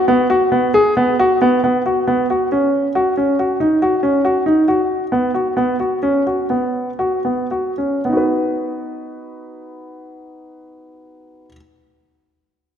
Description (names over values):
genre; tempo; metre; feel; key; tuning
contemporary instrumental, contemporary; 109-139 BPM; 7/4; straight; B major; A4 = 443 Hz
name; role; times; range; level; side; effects
warm concert grand piano; solo; 0.0-11.6 s; B3 to B4; -15 LUFS; equal; none
room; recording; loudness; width
moderate concert hall reverb, RT60 1.9 s; none; -15 LUFS; side -8 dB against mid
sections
0.0-1.6 A section; 1.6-8.0 B section; 8.0-11.9 C section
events
slowing down 4.2-8.0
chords
0.0 B5; 1.6 Bsus2; 8.0 B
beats
0.30 0.74 1.19 | 1.63 2.07 2.50 2.94 3.38 3.81 4.25 | 4.68 5.11 5.56 6.02 6.49 6.99 7.50 | 8.05 8.60 9.14 9.69 10.23 10.77 11.32